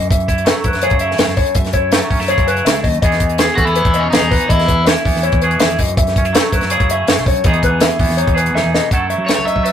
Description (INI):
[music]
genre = math rock and midwest emo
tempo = 163 BPM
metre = 4/4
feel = straight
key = unclear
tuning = A4 = 441 Hz
[part]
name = twangy electric guitar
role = accompaniment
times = 0.0-9.7 s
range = E2 to A4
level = -20 LUFS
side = right 2 dB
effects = none
[part]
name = mellow electric guitar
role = arpeggios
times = 0.0-9.7 s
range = G#4 to F#5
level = -19 LUFS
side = left 2 dB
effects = none
[part]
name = fingered electric bass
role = bass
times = 0.0-9.7 s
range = B1 to F#3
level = -21 LUFS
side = equal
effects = none
[part]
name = compact cocktail drum kit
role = drums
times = 0.0-9.7 s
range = hi-hat, kick drum, snare drum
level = -15 LUFS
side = equal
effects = none
[part]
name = overdriven electric guitar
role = melody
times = 3.6-4.8, 9.3-9.7 s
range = C#4 to E5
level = -16 LUFS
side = equal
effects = none
[sound]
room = moderate booth ambience, RT60 0.2 s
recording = rough rehearsal-room recording, warm saturation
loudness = -12 LUFS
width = side -9 dB against mid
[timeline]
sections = 0.0-8.9 A section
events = drum fill 8.5-8.9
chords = 0.0 F#m9; 3.0 Emaj7; 5.8 F#m9; 7.4 Emaj7; 8.9 F#m7